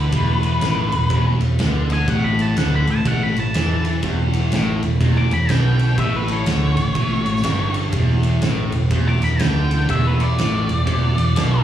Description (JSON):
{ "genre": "blues rock power trio and southern rock", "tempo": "123 BPM", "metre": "4/4", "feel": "swing 63% on 8ths", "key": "unclear", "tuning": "A4 = 439 Hz", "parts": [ { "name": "octave-fuzz lead guitar", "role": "melody", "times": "0.0-11.6 s", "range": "B4 to D6", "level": "-24 LUFS", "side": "left 1 dB", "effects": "distortion, slapback echo" }, { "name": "distorted electric guitar", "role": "riff", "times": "0.0-11.6 s", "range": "E2 to E3", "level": "-23 LUFS", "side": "equal", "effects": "distortion" }, { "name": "vintage muted fingered electric bass", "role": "bass", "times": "0.0-11.6 s", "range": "E1 to E2", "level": "-19 LUFS", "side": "equal", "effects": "none" }, { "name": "oversized low-tuned drum kit", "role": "drums", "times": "0.1-11.5 s", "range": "kick drum, ride cymbal, snare drum", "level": "-22 LUFS", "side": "right 1 dB", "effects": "none" } ], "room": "little or no reverb", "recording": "live gig heard through the venue's PA, club reverb, studio reverb", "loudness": "-16 LUFS", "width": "side -11 dB against mid", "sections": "0.0-11.6 A section", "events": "lead electric guitar solo 0.0-11.6", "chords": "0.0 E5; 2.1 A5; 4.0 E5; 6.0 A7; 7.9 E5", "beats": "| 0.14 0.62 1.11 1.60 | 2.08 2.57 3.06 3.55 | 4.03 4.52 5.01 5.50 | 5.98 6.47 6.96 7.45 | 7.94 8.43 8.91 9.40 | 9.89 10.38 10.87 11.36" }